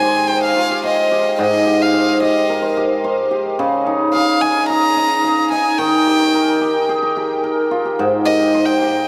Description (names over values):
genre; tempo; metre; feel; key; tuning
folktronica; 109 BPM; 4/4; straight; Ab major; A4 = 444 Hz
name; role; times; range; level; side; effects
dark violin; melody; 0.0-9.1 s; Eb5 to Bb5; -20 LUFS; equal; analog delay
cimbalom; arpeggios; 0.0-9.1 s; Ab2 to C5; -18 LUFS; equal; analog delay
room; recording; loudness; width
wet huge ambient reverb, RT60 7.5 s; dreamy mix soaked in reverb; -16 LUFS; mono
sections
0.0-9.1 A section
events
none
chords
0.0 Abmaj7; 3.6 Dbsus2; 5.8 Eb; 8.0 Abmaj7